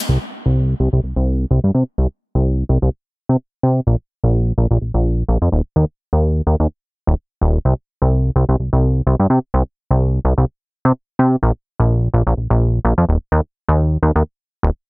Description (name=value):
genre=house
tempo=127 BPM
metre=4/4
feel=swing 55% on 16ths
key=C minor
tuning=A4 = 439 Hz
part: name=plucky analog bass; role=bass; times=0.1-14.7 s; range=Eb1 to C3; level=-13 LUFS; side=equal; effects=low-pass filter
room=little or no reverb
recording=none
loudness=-15 LUFS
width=side -29 dB against mid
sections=0.1-14.9 A section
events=filter sweep on analog synth bass 0.1-14.9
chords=none